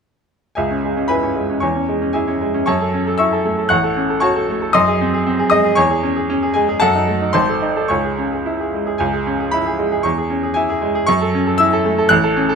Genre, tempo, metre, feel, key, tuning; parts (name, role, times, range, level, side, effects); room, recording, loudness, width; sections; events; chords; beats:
classical, virtuoso piano study; 116 BPM; 2/4; rubato; C# minor; A4 = 437 Hz
bright baby grand piano; solo; 0.6-12.6 s; G#1 to F#6; -15 LUFS; equal
light reverb; close, detailed microphones; -15 LUFS; side -6 dB against mid
0.6-9.0 A section; 9.0-12.6 A section
0.6 C#m; 1.6 C#m/E; 2.7 F#m7; 3.7 F#m/A; 4.7 G#7/F#; 5.8 C#m/E; 6.8 D#dim/F#; 7.3 G#; 7.9 C#m; 10.0 C#m/E; 11.1 F#m7
| 0.57 1.10 | 1.63 2.15 | 2.67 3.19 | 3.71 4.22 | 4.74 5.25 | 5.77 6.29 | 6.80 7.34 | 7.89 8.45 | 9.00 9.53 | 10.05 10.56 | 11.08 11.60 | 12.11